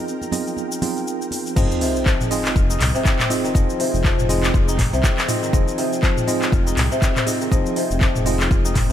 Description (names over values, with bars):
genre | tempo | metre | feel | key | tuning
afro house | 121 BPM | 4/4 | swing 57% on 16ths | F minor | A4 = 439 Hz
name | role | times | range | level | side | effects
ethereal airy pad | sustained chords | 0.0-8.9 s | F3 to G5 | -31 LUFS | equal | ensemble chorus, built-in reverb, sidechain pumping
tine electric piano | stabs | 0.0-8.7 s | C4 to G5 | -25 LUFS | right 4 dB | medium stereo tremolo, sidechain pumping, digital delay
afro-pop drum kit | drums | 0.1-8.9 s | cabasa, crash cymbal, handclaps, hi-hat, toms | -24 LUFS | equal | none
congas | percussion | 0.2-1.4 s | none | -30 LUFS | right 4 dB | none
kora | arpeggios | 1.6-8.9 s | C3 to F4 | -24 LUFS | left 3 dB | sidechain pumping, digital delay
smooth synth bass | bass | 1.6-8.9 s | F1 to C2 | -23 LUFS | left 1 dB | sidechain pumping
electronic kick drum | drums | 1.6-8.9 s | none | -18 LUFS | left 1 dB | none
sub drop | sound effects | 1.6-3.5 s | none | -29 LUFS | left 1 dB | none
room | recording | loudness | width
digital ambience | none | -17 LUFS | side -10 dB against mid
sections
0.0-1.6 A section; 1.6-8.9 B section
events
filter sweep on tine electric piano 0.0-1.6; drop 1.6-8.9; impact 1.6-3.5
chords
0.0 Fm7